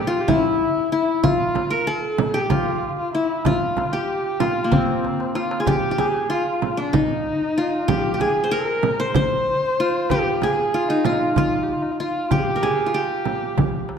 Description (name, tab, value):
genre	Turkish makam ensemble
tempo	190 BPM (eighths)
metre	7/8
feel	straight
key	unclear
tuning	A4 = 440 Hz
part	qanun	melody	0.0-14.0 s	Bb3 to C5	-21 LUFS	left 1 dB	none
part	warm kamancheh	second line	0.0-13.9 s	C4 to C5	-26 LUFS	left 2 dB	none
part	darbuka	percussion	0.3-14.0 s	none	-26 LUFS	left 3 dB	none
part	frame drum	percussion	0.3-13.7 s	none	-25 LUFS	right 6 dB	none
room	wet scoring stage reverb, RT60 1.6 s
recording	dark, warm production, faint mains hum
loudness	-18 LUFS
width	side -7 dB against mid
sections	0.0-5.7 A section; 5.7-14.0 B section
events	drum fill 5.0-5.7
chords	none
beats	0.28 0.60 0.92 | 1.23 1.55 1.87 2.18 2.50 2.82 3.13 | 3.45 3.77 4.08 4.40 4.72 5.04 5.35 | 5.67 5.99 6.30 6.62 6.94 7.25 7.57 | 7.89 8.20 8.52 8.84 9.15 9.47 9.78 | 10.10 10.42 10.73 11.05 11.36 11.68 11.99 | 12.31 12.63 12.94 13.26 13.57 13.89